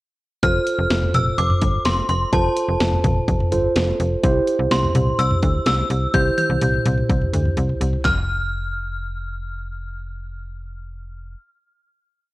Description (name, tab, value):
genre	synth-pop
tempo	126 BPM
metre	4/4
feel	straight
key	F major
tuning	A4 = 440 Hz
part	synth chime	melody	0.4-11.4 s	A5 to G6	-24 LUFS	left 1 dB	ensemble chorus, tape echo
part	tine electric piano	accompaniment	0.4-8.0 s	E4 to C5	-23 LUFS	right 2 dB	none
part	slap-like FM bass	bass	0.4-11.4 s	F1 to D2	-22 LUFS	equal	none
part	house drum kit	drums	0.4-8.2 s	handclaps, hi-hat, kick drum, snare drum, toms	-22 LUFS	equal	none
room	moderate recital hall reverb, RT60 1.6 s, digital ambience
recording	worn, warbling old tape, cassette tape, warbly pitch drift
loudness	-17 LUFS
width	side -19 dB against mid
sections	0.4-8.0 verse; 8.0-11.9 final note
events	drum fill 6.1-8.0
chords	0.4 F; 4.2 C; 8.0 N.C.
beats	| 0.43 0.90 1.38 1.86 | 2.33 2.81 3.28 3.76 | 4.24 4.71 5.19 5.67 | 6.14 6.62 7.09 7.57 | 8.05 8.52 9.00 9.47 | 9.95 10.43 10.90